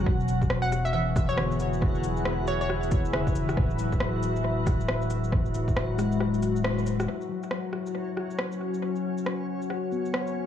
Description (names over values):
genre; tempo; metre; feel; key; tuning
future garage; 137 BPM; 4/4; swing 62% on 16ths; unclear; A4 = 438 Hz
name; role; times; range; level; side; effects
mellow tine electric piano; accompaniment; 0.0-10.5 s; B2 to B3; -31 LUFS; left 3 dB; medium stereo tremolo, sidechain pumping, low-pass filter, dub echo
deep dark ambient pad; sustained chords; 0.0-10.5 s; F#3 to F#5; -32 LUFS; left 2 dB; chorus, built-in reverb, sidechain pumping
warm sub bass; bass; 0.0-7.1 s; D1 to E1; -30 LUFS; equal; none
backwards swelling texture; texture; 0.0-10.5 s; F#3 to C#5; -37 LUFS; equal; built-in reverb
electronic kick drum; drums; 0.1-5.7 s; none; -28 LUFS; equal; overdrive, vintage 12-bit sampler grit
electronic shaker, cabasa and rim click; drums; 0.2-10.3 s; none; -33 LUFS; equal; overdrive, vintage 12-bit sampler grit, analog delay
hollow square pluck; melody; 0.6-3.0 s; C#5 to F#5; -32 LUFS; right 1 dB; chorus, tape echo
room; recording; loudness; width
moderate plate reverb, RT60 2.1 s; echo-heavy mix, cassette tape, small room ambience; -25 LUFS; side -9 dB against mid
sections
0.0-7.1 A section; 7.1-10.5 B section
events
kick drops out 6.2-7.1; band accent 6.6; filter sweep on tine electric piano 7.1-10.5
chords
0.1 E7; 3.6 Dadd9; 7.1 F#5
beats
| 0.06 0.50 0.94 1.38 | 1.82 2.25 2.69 3.13 | 3.57 4.01 4.44 4.88 | 5.32 5.76 6.20 6.63 | 7.07 7.51 7.95 8.38 | 8.82 9.26 9.70 10.14